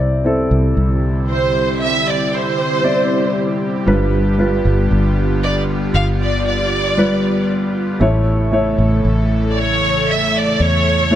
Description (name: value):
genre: pop ballad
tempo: 58 BPM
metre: 4/4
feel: straight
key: C major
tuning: A4 = 439 Hz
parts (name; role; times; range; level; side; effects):
- warm baby grand piano; accompaniment; 0.0-11.2 s; G2 to D5; -19 LUFS; equal; none
- airy breathy pad; sustained chords; 0.4-11.2 s; C#3 to A4; -22 LUFS; equal; chorus
- fingered electric bass; bass; 0.0-11.2 s; G1 to E2; -18 LUFS; equal; none
- rich studio violin section; melody; 1.3-11.2 s; C5 to F5; -18 LUFS; right 2 dB; none
room: light reverb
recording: none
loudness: -14 LUFS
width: side -11 dB against mid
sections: 0.0-11.2 A section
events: none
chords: 0.0 Cadd9; 3.9 G7; 8.0 A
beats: 0.77 1.81 2.84 | 3.88 4.91 5.95 6.98 | 8.01 9.05 10.08 11.12